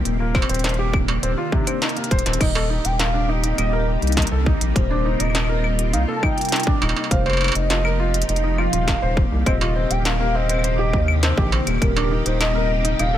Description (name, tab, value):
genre	IDM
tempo	102 BPM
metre	4/4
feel	straight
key	Eb major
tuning	A4 = 440 Hz
part	soft string machine	sustained chords	0.0-13.2 s	C3 to G4	-26 LUFS	equal	phaser, ensemble chorus
part	round analog bass	bass	0.0-13.2 s	Eb1 to Eb2	-22 LUFS	equal	none
part	industrial drum kit	drums	0.1-13.1 s	claves, crash cymbal, hi-hat, snare drum, struck metal	-25 LUFS	right 1 dB	none
part	felt-muted upright piano	arpeggios	0.2-13.2 s	C3 to F5	-27 LUFS	equal	ping-pong delay
part	electronic kick drum	drums	0.3-11.9 s	none	-21 LUFS	equal	distortion
part	warbly nostalgic lead	melody	2.4-13.2 s	Bb4 to A5	-26 LUFS	equal	chorus, tremolo, ping-pong delay
room	little or no reverb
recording	none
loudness	-18 LUFS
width	side -11 dB against mid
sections	0.0-2.4 A section; 2.4-13.2 B section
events	drum fill 2.1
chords	0.1 Cm9/Eb; 2.4 Eb6; 7.1 F9sus4; 9.5 Cm9/Eb; 11.8 Eb6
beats	| 0.05 0.64 1.23 1.82 | 2.41 2.99 3.58 4.17 | 4.76 5.35 5.93 6.52 | 7.11 7.70 8.29 8.88 | 9.46 10.05 10.64 11.23 | 11.82 12.41 12.99